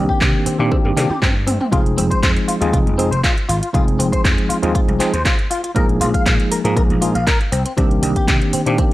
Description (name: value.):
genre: nu-disco, nu disco.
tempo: 119 BPM.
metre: 4/4.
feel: straight.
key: F dorian.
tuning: A4 = 440 Hz.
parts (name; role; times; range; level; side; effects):
bell-like tine electric piano; accompaniment; 0.0-8.9 s; Eb3 to Ab4; -20 LUFS; equal; medium stereo tremolo, sidechain pumping, low-pass filter, tape echo.
direct-recorded clean electric guitar; riff; 0.0-8.8 s; G3 to F5; -23 LUFS; left 3 dB; ensemble chorus, low-pass filter, tape echo.
vintage slap bass; bass; 0.0-8.8 s; F1 to C3; -20 LUFS; equal; transformer saturation.
electronic kick drum; drums; 0.1-8.9 s; none; -18 LUFS; equal; studio reverb.
house drum kit; drums; 0.2-8.9 s; handclaps, hi-hat, toms; -22 LUFS; equal; studio reverb.
room: little or no reverb.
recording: dry, gritty hardware recording.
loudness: -14 LUFS.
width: side -16 dB against mid.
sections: 0.0-8.9 A section.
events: drum fill 0.7-1.7.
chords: 0.0 Cm9; 1.7 Fm7; 5.8 Bb7sus4; 7.5 Cm9.